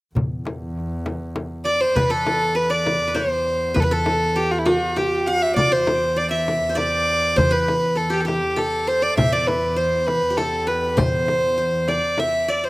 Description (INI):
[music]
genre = Arabic maqam ensemble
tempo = 100 BPM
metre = 3/4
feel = straight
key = E maqam bayati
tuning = A4 = 439 Hz
[part]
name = upright bass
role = bass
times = 0.2-12.0 s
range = E2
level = -27 LUFS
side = equal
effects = none
[part]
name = rich double bass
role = drone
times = 0.2-12.7 s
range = E2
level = -32 LUFS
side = equal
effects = none
[part]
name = darbuka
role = percussion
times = 0.2-1.9, 9.2-12.4 s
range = none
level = -28 LUFS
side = equal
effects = none
[part]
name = frame drum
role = percussion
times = 0.2-12.3 s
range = none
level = -25 LUFS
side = left 2 dB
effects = none
[part]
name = rich violin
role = melody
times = 1.7-12.7 s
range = E4 to F5+47c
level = -20 LUFS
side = equal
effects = none
[part]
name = qanun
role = second line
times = 1.7-12.7 s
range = F#4-50c to F#5-50c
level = -26 LUFS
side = right 1 dB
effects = none
[sound]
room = little or no reverb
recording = recorded outdoors, with no room sound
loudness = -18 LUFS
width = side -21 dB against mid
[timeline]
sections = 0.1-2.0 A section; 2.0-12.7 B section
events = none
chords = none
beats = | 0.15 0.75 1.35 | 1.96 2.56 3.16 | 3.76 4.36 4.96 | 5.56 6.17 6.77 | 7.37 7.97 8.57 | 9.17 9.78 10.38 | 10.98 11.58 12.18